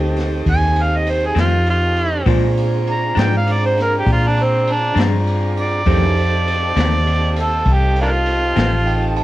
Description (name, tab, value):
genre	slow blues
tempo	67 BPM (dotted quarters)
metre	12/8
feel	straight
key	F mixolydian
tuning	A4 = 440 Hz
part	mellow tine electric piano	accompaniment	0.0-9.2 s	D4 to A5	-28 LUFS	right 9 dB	medium stereo tremolo
part	tonewheel organ	sustained chords	0.0-9.2 s	C4 to Bb4	-26 LUFS	equal	slow rotary speaker
part	vintage muted fingered electric bass	bass	0.0-9.2 s	A1 to Bb2	-18 LUFS	equal	tube saturation
part	jazz brush drum kit	drums	0.2-9.2 s	kick drum, ride cymbal, snare drum	-24 LUFS	equal	cassette tape
part	overdriven harmonica	melody	0.5-9.2 s	Bb3 to Bb5	-19 LUFS	right 1 dB	cassette tape
part	clean electric guitar	accompaniment	1.4-8.8 s	F2 to D4	-23 LUFS	left 10 dB	harmonic tremolo
part	warm horn section	sustained chords	2.3-9.2 s	Eb4 to Bb5	-29 LUFS	equal	none
room	light reverb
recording	home recording on cassette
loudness	-14 LUFS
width	side -16 dB against mid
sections	0.0-9.2 A section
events	harmonica solo 0.0-9.2; tine electric piano fill 8.6-9.2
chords	0.0 F7; 2.3 Bb7; 5.9 F7